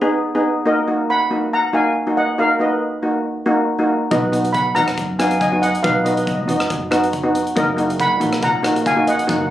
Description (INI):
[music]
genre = calypso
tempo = 139 BPM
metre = 4/4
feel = swing 54% on 16ths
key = unclear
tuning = A4 = 436 Hz
[part]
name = steel pan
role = accompaniment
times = 0.0-9.4 s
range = A#3 to G#4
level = -18 LUFS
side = equal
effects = none
[part]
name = steel pan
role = melody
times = 0.7-9.5 s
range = A#4 to B5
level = -19 LUFS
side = equal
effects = none
[part]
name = upright bass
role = bass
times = 4.1-9.5 s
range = F#1 to F#2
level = -24 LUFS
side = right 1 dB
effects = none
[part]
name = modern studio drum kit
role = drums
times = 4.1-9.4 s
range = hi-hat, kick drum, rim click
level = -27 LUFS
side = equal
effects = none
[sound]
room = moderate studio reverb, RT60 0.5 s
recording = recorded on a phone in the room, club reverb, faint mains hum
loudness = -16 LUFS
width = side -13 dB against mid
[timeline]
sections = 0.0-9.5 A section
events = none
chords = 0.0 G#m; 0.7 D#m; 4.1 B; 7.6 D#m/F#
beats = 0.23 | 0.66 1.09 1.52 1.96 | 2.39 2.82 3.25 3.68 | 4.11 4.54 4.97 5.41 | 5.84 6.27 6.70 7.13 | 7.56 7.99 8.43 8.86 | 9.29